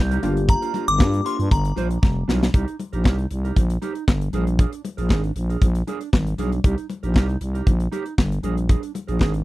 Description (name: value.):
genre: early-eighties boogie funk.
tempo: 117 BPM.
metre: 4/4.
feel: straight.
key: C minor.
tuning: A4 = 440 Hz.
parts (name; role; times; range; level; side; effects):
delicate synth tine bell; melody; 0.0-2.2 s; Bb5 to G6; -26 LUFS; left 1 dB; chorus, phaser.
growling FM bass; bass; 0.0-9.4 s; F1 to G2; -22 LUFS; equal; none.
mellow electric guitar; riff; 0.1-9.4 s; D4 to C5; -30 LUFS; right 8 dB; wide subtle chorus.
modern studio drum kit; drums; 0.1-9.4 s; handclaps, hi-hat, kick drum, snare drum; -17 LUFS; equal; none.
congas; percussion; 0.1-9.3 s; none; -31 LUFS; left 5 dB; none.
funky polysynth comp; accompaniment; 0.2-1.5 s; Bb3 to G4; -26 LUFS; left 4 dB; chorus.
room: little or no reverb.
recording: dry, close 1970s-style studio recording.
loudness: -19 LUFS.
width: side -18 dB against mid.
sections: 0.0-2.5 A section; 2.5-9.4 B section.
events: drum fill 2.0-2.5.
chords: 0.2 Gm7; 2.5 Cm7; 4.3 Bb7; 6.6 Cm7; 8.4 Bb7.